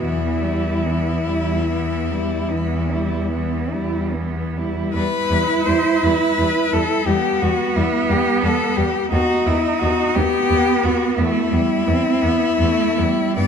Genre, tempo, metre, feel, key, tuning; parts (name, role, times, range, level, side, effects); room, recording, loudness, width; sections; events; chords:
classical, lyrical piece for cello ensemble; 47-60 BPM (dotted quarters); 12/8; rubato; E minor; A4 = 437 Hz
rich cello; melody; 0.0-13.5 s; E4 to D5; -21 LUFS; left 6 dB
rich cello; second line; 0.0-13.5 s; G3 to E4; -22 LUFS; right 6 dB
rich cello; accompaniment; 0.0-13.5 s; E3 to B3; -26 LUFS; left 3 dB
clear cello; bass; 0.0-13.4 s; D#2 to G2; -24 LUFS; right 2 dB
wet concert hall reverb, RT60 1.8 s; minimal, uncompressed stereo recording; -17 LUFS; side -7 dB against mid
0.0-5.0 A section; 5.0-13.5 B section
0.0 Em; 9.1 B/D#; 11.2 E5